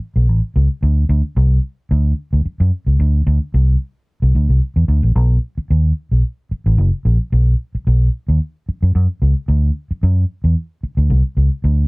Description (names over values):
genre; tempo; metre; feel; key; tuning
funk; 111 BPM; 4/4; straight; unclear; A4 = 436 Hz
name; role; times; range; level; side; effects
vintage muted fingered electric bass; solo; 0.2-11.8 s; F#1 to F#2; -13 LUFS; equal; none
room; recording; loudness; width
moderate booth ambience, RT60 0.2 s; dry, close 1970s-style studio recording; -14 LUFS; side -30 dB against mid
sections
0.0-5.2 A section; 5.2-11.9 B section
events
none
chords
none